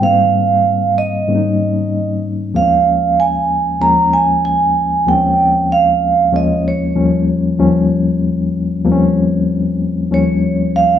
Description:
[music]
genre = soul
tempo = 95 BPM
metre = 4/4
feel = straight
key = unclear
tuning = A4 = 437 Hz
[part]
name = vibraphone with medium mallets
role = melody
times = 0.0-11.0 s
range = Db5 to Bb5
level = -14 LUFS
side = right 4 dB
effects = none
[part]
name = mellow reed electric piano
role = accompaniment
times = 0.0-11.0 s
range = Eb2 to Eb4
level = -15 LUFS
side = left 3 dB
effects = fast tremolo
[sound]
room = moderate large studio reverb, RT60 1.1 s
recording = band playing live in one room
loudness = -12 LUFS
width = side -9 dB against mid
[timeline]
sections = 0.0-11.0 A section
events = none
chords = 0.0 Abmaj9; 2.5 Eb9sus4; 7.0 Eb7

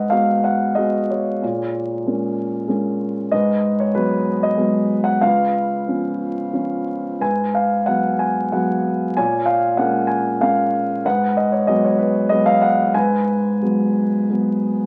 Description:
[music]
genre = classical, lyrical solo piano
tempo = 94 BPM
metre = 3/4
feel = uneven beats, rubato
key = G# dorian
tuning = A4 = 440 Hz
[part]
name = dark baby grand piano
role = solo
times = 0.0-14.9 s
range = C#2 to G#5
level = -19 LUFS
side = equal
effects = none
[sound]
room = moderate studio ambience, RT60 0.5 s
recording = very old 78 rpm record, vinyl crackle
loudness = -19 LUFS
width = mono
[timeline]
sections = 0.0-14.9 A section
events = none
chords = 0.0 G#m7; 1.4 A#m7; 3.3 G#m7; 5.2 C#7; 7.2 G#m7; 9.2 A#m7; 11.1 G#m7

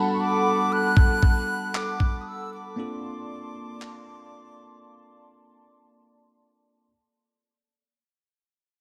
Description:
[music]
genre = contemporary R&B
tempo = 58 BPM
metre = 4/4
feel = straight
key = unclear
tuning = A4 = 440 Hz
[part]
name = bell-like tine electric piano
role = accompaniment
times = 0.0-6.9 s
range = G3 to A4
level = -34 LUFS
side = equal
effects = none
[part]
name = hollow soft pad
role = sustained chords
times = 0.0-6.9 s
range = Bb3 to C6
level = -32 LUFS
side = equal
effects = chorus, sidechain pumping
[part]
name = breathy bright concert flute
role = melody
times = 0.1-5.8 s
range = C#6 to F#6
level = -31 LUFS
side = equal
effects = none
[part]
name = dusty soul sampler-style drum kit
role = drums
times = 1.0-4.1 s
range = handclaps, kick drum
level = -22 LUFS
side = equal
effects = none
[sound]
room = wet plate reverb, RT60 3.4 s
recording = dreamy mix soaked in reverb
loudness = -24 LUFS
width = mono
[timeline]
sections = 0.0-6.9 A section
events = fade-out 0.0-6.9; break 4.8-6.9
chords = 0.0 Gmaj9; 2.8 Bbmaj9

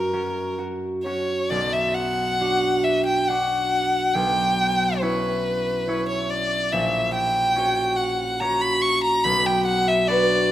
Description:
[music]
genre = classical, romantic duo for violin and harp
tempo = 70 BPM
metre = 3/4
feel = uneven beats, rubato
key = B minor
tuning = A4 = 442 Hz
[part]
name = rich violin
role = melody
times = 0.0-10.5 s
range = A#4 to C#6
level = -21 LUFS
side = left 1 dB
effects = none
[part]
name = concert harp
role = accompaniment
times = 0.0-10.5 s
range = A#1 to C#5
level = -24 LUFS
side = right 1 dB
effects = none
[sound]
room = moderate scoring stage reverb, RT60 1.7 s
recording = close, detailed microphones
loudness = -20 LUFS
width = side -12 dB against mid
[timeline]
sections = 0.0-1.5 A section; 1.5-10.5 B section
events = none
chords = 0.0 F#; 1.5 Bm; 4.1 C#m7b5/B; 6.7 F#7/A#; 9.2 Bm

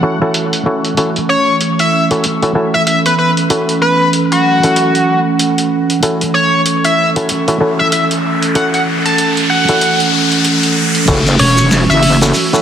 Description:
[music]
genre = glitch hop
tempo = 95 BPM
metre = 4/4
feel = swing 59% on 16ths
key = F# minor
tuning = A4 = 442 Hz
[part]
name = warbly tape-like pad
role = sustained chords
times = 0.0-12.6 s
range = E3 to A4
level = -16 LUFS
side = right 3 dB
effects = chorus, built-in reverb, sidechain pumping
[part]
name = muted clav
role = stabs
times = 0.0-12.6 s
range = C#4 to A4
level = -18 LUFS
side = left 1 dB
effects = auto-wah, sidechain pumping, low-pass filter, dub echo
[part]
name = boom bap sampler-style drum kit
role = drums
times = 0.3-12.6 s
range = crash cymbal, hi-hat, snare drum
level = -18 LUFS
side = equal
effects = low-pass filter on hats, low-pass filter on cymbals, low-pass filter on snare
[part]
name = sync lead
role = melody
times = 1.3-12.1 s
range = F#4 to A5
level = -15 LUFS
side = left 1 dB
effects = wide subtle chorus, vintage 12-bit sampler grit, dub echo
[part]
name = riser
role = sound effects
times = 7.4-11.1 s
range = none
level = -18 LUFS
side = left 1 dB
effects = none
[part]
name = wobble bass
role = bass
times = 11.1-12.3 s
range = E1 to F#1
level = -12 LUFS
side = equal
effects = chorus
[part]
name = electronic kick drum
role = drums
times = 11.1-11.2 s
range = none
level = -18 LUFS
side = equal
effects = none
[part]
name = shekere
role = percussion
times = 11.1-12.6 s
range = none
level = -20 LUFS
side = left 1 dB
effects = none
[sound]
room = wet lush hall reverb, RT60 2.8 s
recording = dense, heavily limited modern master, vinyl crackle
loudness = -10 LUFS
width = side -9 dB against mid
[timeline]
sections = 0.0-11.1 A section; 11.1-12.6 B section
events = filter sweep on clav 0.0-11.1; riser 7.4-11.1; drop 11.1-12.6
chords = 0.0 F#m7

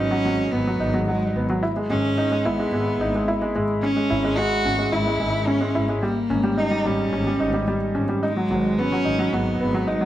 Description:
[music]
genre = piano and strings electronica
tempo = 109 BPM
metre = 4/4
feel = straight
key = G# minor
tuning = A4 = 440 Hz
[part]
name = dark cello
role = melody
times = 0.0-10.1 s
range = G#3 to F#4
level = -25 LUFS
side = equal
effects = digital delay
[part]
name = felt-muted upright piano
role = riff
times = 0.0-10.1 s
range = F#3 to E4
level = -23 LUFS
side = equal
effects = digital delay
[part]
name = clear studio double bass section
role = bass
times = 0.3-9.8 s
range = G#1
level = -27 LUFS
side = equal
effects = none
[sound]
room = moderate recital hall reverb, RT60 1.4 s, studio reverb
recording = none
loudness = -20 LUFS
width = side -13 dB against mid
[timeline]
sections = 0.0-10.1 A section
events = none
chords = 0.0 G#m7; 1.6 Emaj7/G#; 3.8 C#m/G#; 6.0 D#7/G#; 8.2 G#m7

